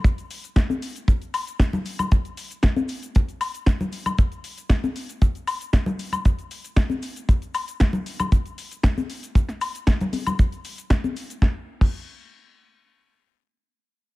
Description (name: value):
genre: nu-disco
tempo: 116 BPM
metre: 4/4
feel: straight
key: none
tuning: none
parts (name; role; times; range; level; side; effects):
- house drum kit; drums; 0.0-11.9 s; crash cymbal, hi-hat, shaker, snare drum, woodblock; -28 LUFS; left 2 dB; small room reverb
- kick drum; drums; 0.0-11.9 s; none; -18 LUFS; equal; small room reverb
- maracas and congas; percussion; 0.0-11.4 s; none; -28 LUFS; left 3 dB; none
room: small room ambience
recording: none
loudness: -21 LUFS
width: side -20 dB against mid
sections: 0.0-11.4 A section; 11.4-13.5 B section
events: drop 0.0-11.4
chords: none